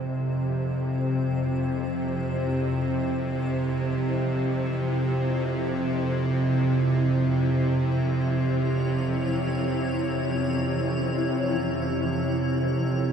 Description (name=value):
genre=dark ambient drone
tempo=free time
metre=none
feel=none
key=unclear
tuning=A4 = 441 Hz
part: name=granular cloud pad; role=sustained chords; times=0.0-13.1 s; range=Fb4 to Db5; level=-32 LUFS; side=left 2 dB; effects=built-in reverb, shimmer reverb
part: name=bowed-like drone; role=drone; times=0.0-13.1 s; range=F2 to C3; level=-24 LUFS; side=right 1 dB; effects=built-in reverb
part: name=quartz singing bowl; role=texture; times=0.0-13.1 s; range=none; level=barely audible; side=none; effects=none
room=wet cathedral reverb, RT60 5.1 s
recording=in a vast, echoing space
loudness=-23 LUFS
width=side -7 dB against mid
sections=0.0-13.1 A section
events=fade-in on ambient pad 0.0-13.1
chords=0.0 Dbm